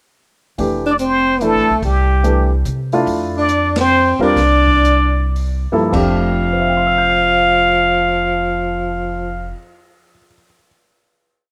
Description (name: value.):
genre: jazz, small-group swing and bop.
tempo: 101-145 BPM.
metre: 3/4.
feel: swing 65% on 8ths.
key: F major.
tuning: A4 = 440 Hz.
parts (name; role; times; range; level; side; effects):
warm grand piano; accompaniment; 0.6-10.7 s; F2 to C7; -21 LUFS; equal; none.
upright bass; bass; 0.6-9.5 s; F1 to C3; -22 LUFS; equal; none.
open jazz drum kit; drums; 0.6-9.4 s; crash cymbal, cymbal swell, hi-hat, kick drum, ride cymbal, snare drum; -30 LUFS; equal; none.
trumpet with plunger mute; melody; 0.9-9.5 s; G4 to F5; -18 LUFS; equal; none.
warm tenor saxophone; second line; 0.9-9.5 s; F3 to D4; -22 LUFS; equal; none.
room: light reverb, small room reverb.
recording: rough home demo mix.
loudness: -15 LUFS.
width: mono.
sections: 0.6-5.9 A section; 5.9-9.5 final chord.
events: slowing down 3.1-5.9; band accent 3.7.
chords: 0.6 Fmaj13; 1.8 Cadd9; 3.1 Fmaj13.